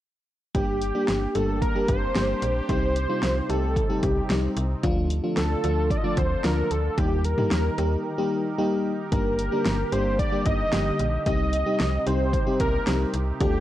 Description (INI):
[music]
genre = synth-pop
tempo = 112 BPM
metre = 4/4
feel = straight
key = G minor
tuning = A4 = 442 Hz
[part]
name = wide unison lead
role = melody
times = 0.5-13.6 s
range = G4 to Eb5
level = -27 LUFS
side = right 1 dB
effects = analog delay
[part]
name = FM electric piano with soft pad layer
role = accompaniment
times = 0.5-13.6 s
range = D3 to A4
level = -28 LUFS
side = left 2 dB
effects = chorus
[part]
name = sweeping resonant pad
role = sustained chords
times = 0.5-13.6 s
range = C3 to Bb4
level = -34 LUFS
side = right 1 dB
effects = chorus
[part]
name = slap-like FM bass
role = bass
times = 0.5-13.6 s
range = G1 to Eb2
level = -27 LUFS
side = equal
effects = none
[part]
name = deep house drum kit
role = drums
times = 0.5-13.5 s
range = hi-hat, kick drum, snare drum, toms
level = -27 LUFS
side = equal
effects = none
[sound]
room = light reverb, digital ambience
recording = dry, gritty hardware recording, cassette tape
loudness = -22 LUFS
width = side -13 dB against mid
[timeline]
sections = 0.5-13.6 A section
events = break 8.0-9.1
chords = 0.5 Gm; 2.7 Cm; 4.8 Dm; 7.0 Eb; 9.1 Gm; 11.3 Cm